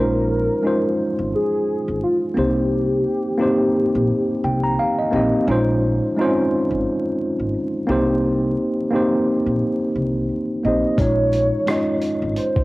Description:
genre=lo-fi hip hop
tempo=87 BPM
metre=4/4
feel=swing 57% on 16ths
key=Bb dorian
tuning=A4 = 441 Hz
part: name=warm velvety synth lead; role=melody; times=0.0-5.1, 10.6-12.6 s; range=F4 to Eb5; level=-23 LUFS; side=equal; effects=chorus
part: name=mellow tine electric piano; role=accompaniment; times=0.0-12.6 s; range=Ab3 to Bb5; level=-19 LUFS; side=equal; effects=medium stereo tremolo, cassette tape
part: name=upright bass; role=bass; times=0.0-12.4 s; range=Ab1 to C2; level=-24 LUFS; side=equal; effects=none
part: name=dusty soul sampler-style drum kit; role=drums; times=11.0-12.6 s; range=hi-hat, kick drum, rim click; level=-23 LUFS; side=equal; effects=cassette tape
room=light reverb, digital ambience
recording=home recording on cassette, vinyl crackle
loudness=-17 LUFS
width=side -20 dB against mid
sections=0.0-12.6 A section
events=tine electric piano fill 4.1-5.5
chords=0.0 Bbm11; 2.4 Cm7; 5.5 Bbm11; 7.9 Cm7; 11.0 Bbm7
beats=0.63 1.32 2.01 | 2.70 3.39 4.08 4.77 | 5.46 6.15 6.84 7.53 | 8.22 8.91 9.60 10.29 | 10.98 11.67 12.36

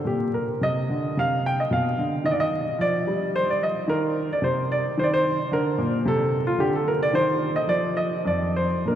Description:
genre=classical, baroque-style suite movement for grand piano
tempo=109 BPM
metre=3/4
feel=rubato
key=Bb major from 3.9 s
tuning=A4 = 440 Hz
part: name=warm baby grand piano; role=solo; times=0.0-9.0 s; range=F2 to G5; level=-21 LUFS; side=equal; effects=none
room=wet cathedral reverb, RT60 6.2 s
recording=vinyl crackle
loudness=-21 LUFS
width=side -10 dB against mid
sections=0.0-9.0 A section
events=none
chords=0.0 Bb5; 0.6 Cm; 1.7 Bdim; 2.2 Ebmaj9; 3.9 Cm/Eb; 5.0 N.C.; 5.5 Bb; 7.1 N.C.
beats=0.05 | 0.60 1.16 1.70 | 2.24 2.79 3.34 | 3.89 4.43 4.96 | 5.51 6.04 6.57 | 7.12 7.67 8.25 | 8.86

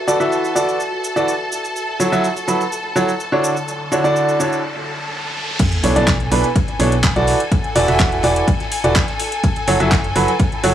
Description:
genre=piano house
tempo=125 BPM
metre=4/4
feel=straight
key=unclear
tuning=A4 = 440 Hz
part: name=bright studio violin section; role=sustained chords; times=0.0-10.7 s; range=A4 to A5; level=-25 LUFS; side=left 1 dB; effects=sidechain pumping
part: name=warbly tape-like pad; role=texture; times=0.0-4.6, 9.3-10.7 s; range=D3 to A5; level=-30 LUFS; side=equal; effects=chorus, built-in reverb, sidechain pumping
part: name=clear upright piano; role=riff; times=0.1-10.7 s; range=B2 to E5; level=-17 LUFS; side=right 1 dB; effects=sidechain pumping, analog delay
part: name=garage drum kit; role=drums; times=0.1-10.7 s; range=crash cymbal, handclaps, hi-hat, shaker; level=-24 LUFS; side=equal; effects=none
part: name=riser and sub drop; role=sound effects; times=3.2-7.5 s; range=none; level=-28 LUFS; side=equal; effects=none
part: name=big rock drum kit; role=drums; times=5.6-10.7 s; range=hi-hat, ride cymbal, snare drum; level=-33 LUFS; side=left 2 dB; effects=none
part: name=electronic kick drum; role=drums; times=5.6-10.5 s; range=none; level=-18 LUFS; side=equal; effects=none
part: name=organ-like FM bass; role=bass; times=5.8-10.7 s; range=E1 to B1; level=-20 LUFS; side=equal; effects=sidechain pumping
room=studio reverb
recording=dry, gritty hardware recording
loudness=-15 LUFS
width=side -10 dB against mid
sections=0.0-5.6 A section; 5.6-10.7 B section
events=riser 3.2-5.6; break 4.6-5.6; drop 5.6-10.7; impact 5.6-7.5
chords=0.0 E9sus4; 1.5 Dmaj9; 5.6 Bm11; 7.3 E9sus4; 9.2 F#m7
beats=0.32 0.80 1.28 | 1.76 2.24 2.72 3.20 | 3.68 4.16 4.64 5.12 | 5.60 6.08 6.56 7.04 | 7.52 8.00 8.48 8.96 | 9.44 9.92 10.40

